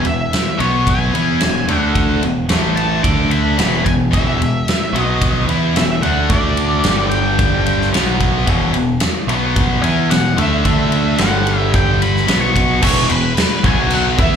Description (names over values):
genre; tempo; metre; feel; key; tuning
quiet-loud alternative rock; 110 BPM; 4/4; straight; unclear; A4 = 439 Hz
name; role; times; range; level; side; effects
octave-fuzz lead guitar; melody; 0.0-14.4 s; B4 to D6; -21 LUFS; left 1 dB; distortion, slapback echo
twelve-string electric guitar; arpeggios; 0.0-4.1 s; E2 to E4; -27 LUFS; right 1 dB; none
tight distorted guitar; riff; 0.0-14.4 s; E2 to E4; -21 LUFS; left 12 dB; distortion, slapback echo
tight distorted guitar; riff; 0.0-14.4 s; E2 to E4; -21 LUFS; right 11 dB; distortion, slapback echo
growling picked electric bass; bass; 0.0-14.4 s; E1 to E2; -19 LUFS; equal; overdrive
big rock drum kit; drums; 0.0-14.4 s; crash cymbal, kick drum, ride cymbal, snare drum; -18 LUFS; equal; none
overdriven tonewheel organ; sustained chords; 12.8-14.4 s; E3 to F#5; -30 LUFS; right 1 dB; none
room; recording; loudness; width
light reverb; live gig heard through the venue's PA, club reverb; -13 LUFS; side -7 dB against mid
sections
0.0-12.8 A section; 12.8-14.4 B section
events
lead electric guitar solo 0.0-12.8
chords
0.0 E5; 0.6 B5; 1.1 E; 1.7 D5; 2.2 E5; 2.5 A5; 3.0 D5; 3.6 E5; 4.9 B5; 5.5 E5; 6.3 D5; 6.9 G5; 7.9 B5; 8.5 E5; 9.3 B5; 9.8 E5; 10.7 D5; 11.2 G5; 12.3 B5; 12.8 E; 13.6 B5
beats
0.31 0.86 1.41 | 1.95 2.50 3.04 3.59 | 4.13 4.67 5.22 5.76 | 6.31 6.85 7.40 7.94 | 8.48 9.03 9.57 10.11 | 10.66 11.20 11.74 12.29 | 12.83 13.37 13.91